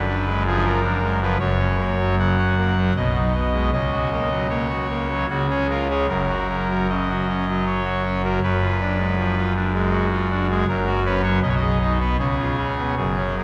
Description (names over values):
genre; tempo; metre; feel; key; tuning
classical, chorale-style piece for pipe organ; 78 BPM; 3/4; rubato; F# major; A4 = 440 Hz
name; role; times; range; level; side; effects
pipe organ, trumpet; solo; 0.0-13.4 s; F#1 to F#5; -21 LUFS; equal; none
room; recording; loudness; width
wet church reverb, RT60 3.1 s; none; -21 LUFS; mono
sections
0.0-13.4 A section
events
none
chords
0.0 Fdim7/F#; 1.4 F#; 2.9 G#m/B; 3.7 F#/C#; 5.3 C#; 6.1 F#; 8.4 Fdim7/F#; 10.7 F#; 11.4 G#m/B; 12.2 C#7